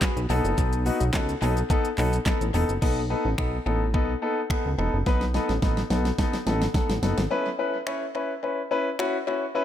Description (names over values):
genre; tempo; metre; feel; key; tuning
dance-pop; 107 BPM; 4/4; straight; unclear; A4 = 440 Hz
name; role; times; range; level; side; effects
clear baby grand piano; accompaniment; 0.0-9.6 s; B3 to F#5; -26 LUFS; left 3 dB; sidechain pumping, tape echo
pop drum kit; drums; 0.0-9.1 s; crash cymbal, finger snaps, handclaps, hi-hat, kick drum, shaker, snare drum; -27 LUFS; right 1 dB; tape echo
chorused synth bass; bass; 0.2-7.3 s; E1 to C#2; -26 LUFS; right 1 dB; sidechain pumping
room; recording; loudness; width
light reverb, digital ambience; echo-heavy mix; -23 LUFS; side -10 dB against mid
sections
0.0-2.8 A section; 2.8-7.3 B section; 7.3-9.6 C section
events
drum fill 5.1-7.3; grand piano fill 6.5-7.3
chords
0.3 B7; 7.3 C#m7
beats
0.02 | 0.58 1.14 1.70 2.26 | 2.82 3.38 3.94 4.50 | 5.06 5.62 6.18 6.75 | 7.31 7.87 8.43 8.99 | 9.55